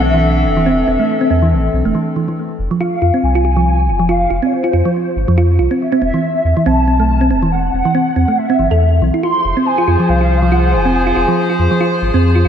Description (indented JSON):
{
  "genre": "IDM",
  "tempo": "140 BPM",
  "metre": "4/4",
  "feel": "swing 56% on 16ths",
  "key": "unclear",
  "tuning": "A4 = 437 Hz",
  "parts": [
    { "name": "warbly nostalgic lead", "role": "melody", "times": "0.0-11.6 s", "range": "C5 to C6", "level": "-18 LUFS", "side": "left 1 dB", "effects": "ensemble chorus, ping-pong delay" },
    { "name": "hollow soft pad", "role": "sustained chords", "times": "0.0-2.3, 9.2-12.5 s", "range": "E3 to C5", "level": "-19 LUFS", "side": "left 2 dB", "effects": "chorus" },
    { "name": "thumb-piano-like synth pluck", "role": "arpeggios", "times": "0.0-12.5 s", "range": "E3 to A4", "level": "-16 LUFS", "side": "right 2 dB", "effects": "chorus, ping-pong delay" },
    { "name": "warm sub bass", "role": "bass", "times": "0.0-12.5 s", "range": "E1 to F2", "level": "-15 LUFS", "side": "equal", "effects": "none" },
    { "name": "flickering grainy texture", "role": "texture", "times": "9.6-12.5 s", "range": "C5", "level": "-26 LUFS", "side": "equal", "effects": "built-in reverb, lush chorus" }
  ],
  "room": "moderate lush hall reverb, RT60 2.5 s",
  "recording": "dreamy mix soaked in reverb",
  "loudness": "-12 LUFS",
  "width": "side -8 dB against mid",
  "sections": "0.0-2.4 A section; 2.4-12.5 A section",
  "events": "none",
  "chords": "0.0 C6/E; 2.4 Fm; 5.8 C6/E; 9.2 Fm",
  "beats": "0.23 | 0.66 1.09 1.52 1.95 | 2.38 2.81 3.23 3.66 | 4.09 4.52 4.95 5.38 | 5.81 6.23 6.66 7.09 | 7.52 7.95 8.38 8.81 | 9.23 9.66 10.09 10.52 | 10.95 11.38 11.81 12.23"
}